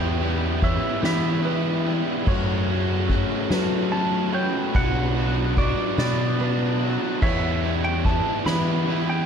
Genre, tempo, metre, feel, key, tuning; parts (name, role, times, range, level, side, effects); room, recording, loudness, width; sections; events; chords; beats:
post-rock; 48 BPM (dotted quarters); 6/8; straight; E dorian; A4 = 439 Hz
clean lap steel guitar; melody; 0.0-9.3 s; D5 to B5; -29 LUFS; right 2 dB; analog delay
felt-muted upright piano; arpeggios; 0.0-9.3 s; B4 to C#6; -36 LUFS; right 5 dB; analog delay
twangy electric guitar; arpeggios; 0.0-9.3 s; F#2 to E4; -33 LUFS; left 3 dB; lush chorus, analog delay
biting overdriven guitar; riff; 0.0-9.3 s; B2 to G4; -29 LUFS; right 15 dB
distorted electric guitar; riff; 0.0-9.3 s; B2 to G4; -29 LUFS; left 13 dB; distortion
growling picked electric bass; bass; 0.0-9.3 s; B1 to F#3; -25 LUFS; equal; overdrive
soft-mallet drum kit; drums; 0.2-9.1 s; crash cymbal, kick drum, ride cymbal, snare drum; -26 LUFS; right 1 dB
studio reverb; dark, warm production; -20 LUFS; side -7 dB against mid
0.0-9.3 A section
0.0 Em; 2.3 F#m7; 4.7 Bm; 7.2 Em
1.04 | 2.27 3.51 | 4.75 5.98 | 7.22 8.46